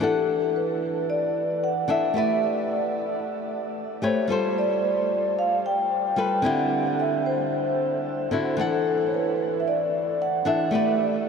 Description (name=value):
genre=chillout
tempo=112 BPM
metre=4/4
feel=straight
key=unclear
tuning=A4 = 442 Hz
part: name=vibraphone with soft mallets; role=melody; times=0.0-11.3 s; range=A4 to G5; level=-24 LUFS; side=equal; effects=shimmer reverb, ping-pong delay
part: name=flamenco guitar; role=accompaniment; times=0.0-11.3 s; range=D3 to F#5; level=-26 LUFS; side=moving between left 3 dB and right 3 dB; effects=auto-pan, shimmer reverb
room=wet huge ambient reverb, RT60 7.5 s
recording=dreamy mix soaked in reverb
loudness=-22 LUFS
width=side -6 dB against mid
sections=0.0-11.3 A section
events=none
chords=0.0 E9sus4; 2.2 A9sus4; 4.3 G9sus4; 6.4 D9sus4; 8.6 E9sus4; 10.7 A9sus4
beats=| 0.02 0.55 1.09 1.62 | 2.16 2.69 3.23 3.77 | 4.30 4.84 5.37 5.91 | 6.44 6.98 7.52 8.05 | 8.59 9.12 9.66 10.19 | 10.73 11.27